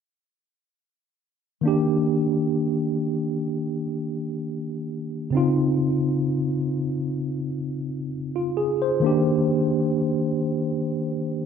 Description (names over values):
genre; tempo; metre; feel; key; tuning
R&B; 65 BPM; 4/4; swing 54% on 16ths; Eb major; A4 = 440 Hz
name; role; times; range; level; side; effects
mellow tine electric piano; accompaniment; 1.6-11.5 s; Db3 to C5; -22 LUFS; equal; medium stereo tremolo
room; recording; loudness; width
moderate plate reverb, RT60 3.4 s; none; -22 LUFS; side -7 dB against mid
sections
1.6-11.5 A section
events
none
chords
1.6 Ebmaj7; 5.3 Dbmaj9; 9.0 Ebmaj7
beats
| 1.64 2.56 3.48 4.41 | 5.33 6.25 7.18 8.10 | 9.02 9.95 10.87